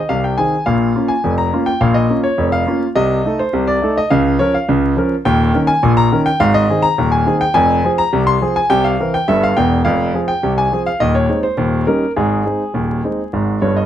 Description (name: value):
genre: ragtime piano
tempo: 104 BPM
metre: 2/4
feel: straight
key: Ab major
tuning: A4 = 440 Hz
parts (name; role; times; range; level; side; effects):
- clear concert grand piano; solo; 0.0-13.9 s; Eb1 to C6; -13 LUFS; equal; none
room: moderate club reverb, RT60 0.5 s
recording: dark, warm production, vinyl crackle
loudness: -13 LUFS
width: side -10 dB against mid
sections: 0.0-13.9 A section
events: grand piano fill 13.6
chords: 0.0 Ab/C; 0.7 Bbm; 3.0 Adim/C; 4.1 Bbm/Db; 5.3 Eb5; 6.4 Ab; 7.6 Fm; 8.7 C7; 9.8 Fm; 11.0 Ab/Eb; 11.6 Eb7; 12.2 Ab